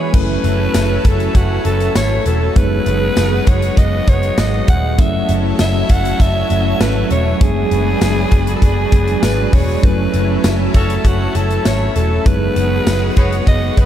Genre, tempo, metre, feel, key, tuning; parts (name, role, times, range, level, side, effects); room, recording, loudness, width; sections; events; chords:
1980s-style pop; 99 BPM; 4/4; straight; F# minor; A4 = 440 Hz
raspy alto saxophone; melody; 0.0-13.9 s; F#4 to F#5; -20 LUFS; equal
mellow tine electric piano; accompaniment; 0.0-13.9 s; E3 to A4; -20 LUFS; right 1 dB; medium stereo tremolo
lush unison pad; sustained chords; 0.0-13.9 s; E3 to B4; -24 LUFS; equal; chorus
vintage muted picked electric bass; bass; 0.1-13.9 s; D#1 to G#1; -18 LUFS; equal
modern studio drum kit; drums; 0.1-13.9 s; crash cymbal, hi-hat, kick drum, snare drum, tambourine; -16 LUFS; equal
tambourine; percussion; 0.7-13.0 s; -40 LUFS; left 6 dB
clear horn section; stabs; 10.7-13.4 s; B3 to C#5; -32 LUFS; left 1 dB
moderate huge ambient reverb, RT60 8.1 s; dreamy mix soaked in reverb; -12 LUFS; side -11 dB against mid
0.1-13.9 A section
0.1 F#m7; 2.6 G#m7/F#; 5.0 F#m7; 7.4 G#m7b5/F#; 9.8 F#m7; 12.3 G#m7/F#